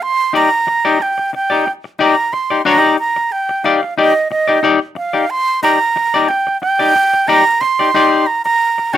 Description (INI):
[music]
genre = funk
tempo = 91 BPM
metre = 4/4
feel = straight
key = unclear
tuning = A4 = 439 Hz
[part]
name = breathy concert flute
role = melody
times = 0.0-9.0 s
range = Eb5 to C6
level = -14 LUFS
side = right 3 dB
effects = none
[part]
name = semi-hollow electric guitar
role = accompaniment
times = 0.3-9.0 s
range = Eb4 to D5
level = -14 LUFS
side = left 5 dB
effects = none
[sound]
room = moderate studio ambience, RT60 0.5 s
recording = rough home demo mix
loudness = -12 LUFS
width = side -11 dB against mid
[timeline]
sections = 0.0-9.0 A section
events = none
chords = 0.0 Ebmaj7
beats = | 0.01 0.68 1.34 2.00 | 2.66 3.32 3.98 4.64 | 5.30 5.96 6.62 7.28 | 7.94 8.60